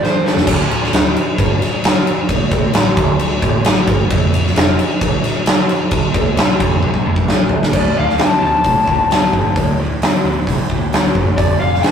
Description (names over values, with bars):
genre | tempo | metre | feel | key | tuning
blues rock power trio and southern rock | 132 BPM | 4/4 | straight | D minor | A4 = 440 Hz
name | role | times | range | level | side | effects
lead guitar through a small cranked amp | melody | 0.0-0.5, 7.8-11.9 s | A4 to A5 | -16 LUFS | left 3 dB | overdrive
crunchy overdriven guitar | riff | 0.0-11.9 s | D2 to A3 | -24 LUFS | right 1 dB | none
huge arena drum kit | drums | 0.0-11.9 s | crash cymbal, hi-hat, kick drum, snare drum, toms | -14 LUFS | equal | none
vintage muted fingered electric bass | bass | 0.4-11.8 s | D1 to C3 | -21 LUFS | equal | none
room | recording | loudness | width
light reverb | rough rehearsal-room recording, tube saturation | -12 LUFS | side -7 dB against mid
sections
0.5-7.7 A section; 7.7-11.9 B section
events
drum fill 0.0-0.5, 6.8-7.7; lead electric guitar solo 7.7-11.9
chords
0.5 D5; 4.1 F5; 7.7 D5; 11.4 F5